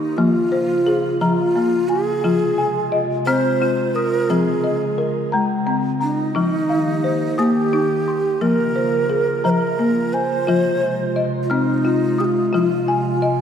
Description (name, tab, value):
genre	world meditative, meditative tuned percussion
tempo	58 BPM (dotted quarters)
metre	6/8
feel	straight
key	F minor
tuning	A4 = 440 Hz
part	breathy low Native American-style wooden flute	melody	0.0-13.4 s	Eb4 to C5	-21 LUFS	right 2 dB	shimmer reverb, diffuse ambient delay
part	warbly tape-like pad	sustained chords	0.0-13.4 s	C3 to G4	-25 LUFS	right 2 dB	chorus, built-in reverb, shimmer reverb
part	folk marimba with medium mallets	arpeggios	0.0-13.4 s	F3 to F6	-20 LUFS	left 3 dB	shimmer reverb, diffuse ambient delay
room	wet lush hall reverb, RT60 2.0 s, studio ambience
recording	dark, warm production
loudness	-16 LUFS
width	side -8 dB against mid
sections	0.0-13.4 A section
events	none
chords	0.2 Bbm; 2.2 Fm; 4.3 Db; 6.4 Eb; 8.4 Bbm; 10.5 Fm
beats	| 0.18 1.21 | 2.24 3.27 | 4.30 5.33 | 6.36 7.39 | 8.42 9.45 | 10.47 11.50 | 12.53